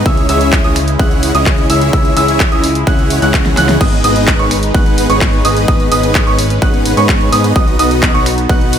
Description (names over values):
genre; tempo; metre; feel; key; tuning
EDM, festival progressive house; 128 BPM; 4/4; straight; G# minor; A4 = 440 Hz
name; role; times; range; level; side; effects
supersaw pad; sustained chords; 0.0-8.8 s; C#3 to B4; -20 LUFS; equal; phaser, sidechain pumping
bright grand piano; arpeggios; 0.0-8.8 s; C#6 to F#6; -18 LUFS; right 3 dB; sidechain pumping, dub echo
dense compressed supersaw; riff; 0.0-8.8 s; B3 to F#5; -16 LUFS; equal; sidechain pumping, dub echo
fat analog bass; bass; 0.0-8.8 s; G#1 to G#2; -17 LUFS; equal; tube saturation, sidechain pumping
big-room dance drum kit; drums; 0.1-8.8 s; crash cymbal, finger snaps, handclaps, hi-hat, snare drum; -18 LUFS; equal; overdrive, studio reverb
electronic kick drum; drums; 0.1-8.6 s; none; -13 LUFS; equal; overdrive, studio reverb
room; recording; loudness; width
light reverb; none; -9 LUFS; side -8 dB against mid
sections
0.0-8.8 A section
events
drum fill 3.5-3.8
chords
0.1 C#m; 3.8 G#m; 7.6 B